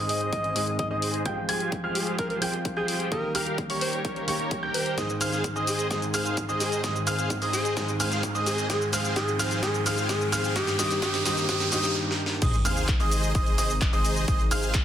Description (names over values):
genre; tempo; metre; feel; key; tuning
EDM, festival progressive house; 129 BPM; 4/4; straight; Ab major; A4 = 439 Hz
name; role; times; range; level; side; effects
felt-muted upright piano; accompaniment; 0.0-12.4 s; G2 to G5; -31 LUFS; right 1 dB; sidechain pumping, digital delay
lush unison pad; sustained chords; 0.0-14.8 s; C3 to G5; -36 LUFS; equal; chorus, sidechain pumping
clear grand piano; arpeggios; 0.0-14.7 s; Db6 to Ab6; -32 LUFS; right 2 dB; vintage 12-bit sampler grit, sidechain pumping, low-pass filter, digital delay
dense compressed supersaw; riff; 0.0-14.7 s; F4 to Ab5; -31 LUFS; equal; sidechain pumping, low-pass filter, digital delay
mellow alto saxophone; melody; 0.1-11.9 s; G4 to Eb5; -32 LUFS; left 1 dB; digital delay
big-room dance drum kit; drums; 0.1-14.8 s; crash cymbal, handclaps, hi-hat, shaker, snare drum; -31 LUFS; left 1 dB; high-pass filter on hats, high-pass filter on snare, high-pass filter on perc, high-pass filter on cymbals
electronic kick drum; drums; 0.3-14.8 s; none; -29 LUFS; equal; overdrive, high-pass filter on kick
riser and sub drop; sound effects; 6.9-14.3 s; none; -34 LUFS; right 2 dB; none
saturated sub bass; bass; 12.4-14.8 s; Ab1; -30 LUFS; equal; sidechain pumping
room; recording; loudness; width
moderate lush hall reverb, RT60 1.5 s; dense, heavily limited modern master; -24 LUFS; side -10 dB against mid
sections
0.0-12.4 A section; 12.4-14.8 B section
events
build-up 0.0-12.4; filter sweep on supersaw synth 0.0-12.4; drum fill 5.0-12.0, 12.0-12.4; riser 6.9-12.0; break 12.0-12.4; drop 12.4-14.8; impact 12.4-14.3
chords
0.0 Ab; 1.3 Fmadd9; 3.1 Eb; 5.0 Ab; 8.7 Fmadd9; 10.6 Eb; 12.4 Ab